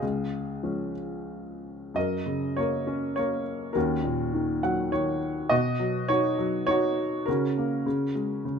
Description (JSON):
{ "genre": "classical, lyrical solo piano", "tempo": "87-106 BPM", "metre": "3/4", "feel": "rubato", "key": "F# major", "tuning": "A4 = 440 Hz", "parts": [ { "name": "dark baby grand piano", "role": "solo", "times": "0.0-8.6 s", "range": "Db2 to F#5", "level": "-25 LUFS", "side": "equal", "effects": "none" } ], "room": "light reverb", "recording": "close, detailed microphones", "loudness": "-25 LUFS", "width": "side -6 dB against mid", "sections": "0.0-2.0 A section; 2.0-8.6 B section", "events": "grand piano fill 4.3-5.5", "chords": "0.0 Db; 2.0 F#6; 3.8 D#m7; 5.5 Badd9; 7.3 F#/C#; 7.9 C#5" }